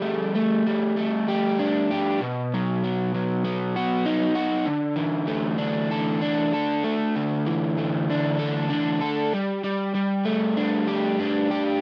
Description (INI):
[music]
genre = rock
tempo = 97 BPM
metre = 4/4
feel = straight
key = unclear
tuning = A4 = 440 Hz
[part]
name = crunchy overdriven guitar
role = solo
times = 0.0-11.8 s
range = B2 to A4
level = -24 LUFS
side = equal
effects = none
[sound]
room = light reverb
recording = dry, close 1970s-style studio recording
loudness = -24 LUFS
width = mono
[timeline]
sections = 0.0-4.7 A section; 4.7-11.8 A section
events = none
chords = 0.0 Gsus2; 2.2 B; 4.7 Dsus2; 9.3 Gsus2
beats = 0.34 0.96 1.58 | 2.20 2.82 3.44 4.06 | 4.68 5.30 5.92 6.53 | 7.15 7.77 8.39 9.01 | 9.63 10.25 10.87 11.49